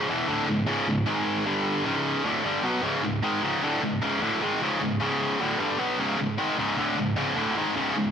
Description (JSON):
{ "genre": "metal", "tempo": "152 BPM", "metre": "4/4", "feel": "straight", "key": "unclear", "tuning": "A4 = 440 Hz", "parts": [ { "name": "heavy high-gain guitar", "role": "solo", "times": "0.0-8.1 s", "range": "C#2 to B3", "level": "-23 LUFS", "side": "equal", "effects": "distortion" } ], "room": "moderate lush hall reverb, RT60 2.5 s", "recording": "rough home demo mix", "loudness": "-23 LUFS", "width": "side -7 dB against mid", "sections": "0.0-1.8 A section; 1.8-8.1 B section", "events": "none", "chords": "0.0 C#m; 1.1 G#5; 1.5 G5; 1.8 C#5", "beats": "| 0.28 0.67 1.06 1.45 | 1.85 2.24 2.63 3.03 | 3.42 3.82 4.21 4.61 | 5.00 5.39 5.79 6.18 | 6.58 6.97 7.37 7.76" }